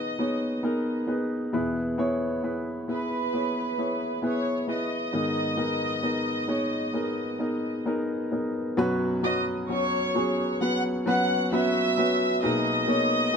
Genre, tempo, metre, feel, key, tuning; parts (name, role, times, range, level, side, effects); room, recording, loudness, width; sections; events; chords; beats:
pop; 66 BPM; 4/4; straight; A4 = 440 Hz
warm studio violin section; melody; 0.0-13.4 s; B4 to F#6; -28 LUFS; right 1 dB
warm baby grand piano; accompaniment; 0.0-13.4 s; B1 to C#5; -26 LUFS; equal
moderate lush hall reverb, RT60 2.4 s; -24 LUFS; side -6 dB against mid
0.0-8.8 A section; 8.8-13.4 B section
0.0 G#madd9/B; 1.5 E; 5.1 G#madd9; 8.8 Bsus2; 12.4 G#madd9/B
0.64 | 1.53 2.43 3.33 4.23 | 5.13 6.03 6.94 7.86 | 8.78 9.69 10.61 11.51 | 12.42 13.33